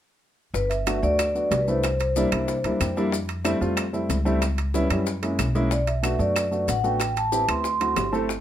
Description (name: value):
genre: Afro-Cuban jazz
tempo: 186 BPM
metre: 4/4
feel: straight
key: G major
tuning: A4 = 440 Hz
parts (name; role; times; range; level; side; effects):
- vibraphone with soft mallets; melody; 0.5-2.9, 5.7-8.1 s; B4 to C6; -25 LUFS; equal; plate reverb
- upright bass; bass; 0.5-8.4 s; G1 to F#2; -27 LUFS; equal; none
- bongos; percussion; 0.5-8.4 s; none; -35 LUFS; left 6 dB; none
- maracas; percussion; 0.5-8.4 s; none; -38 LUFS; left 5 dB; none
- timbales; percussion; 0.7-8.1 s; none; -32 LUFS; right 7 dB; none
- dark baby grand piano; accompaniment; 0.9-8.3 s; G3 to G5; -26 LUFS; equal; none
- claves; percussion; 0.9-8.1 s; none; -35 LUFS; left 2 dB; none
room: moderate club reverb, RT60 0.7 s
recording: none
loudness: -21 LUFS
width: side -11 dB against mid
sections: 0.5-8.4 A section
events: grand piano fill 2.6-3.1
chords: 0.5 Gmaj7; 1.8 C7; 3.1 Fmaj7; 4.4 C#m7b5; 5.1 F#7; 5.7 Bm7; 7.0 Am7; 7.6 D7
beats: | 0.54 0.86 1.19 1.51 | 1.83 2.16 2.48 2.80 | 3.13 3.45 3.77 4.10 | 4.42 4.74 5.07 5.39 | 5.71 6.03 6.36 6.68 | 7.00 7.33 7.65 7.97 | 8.29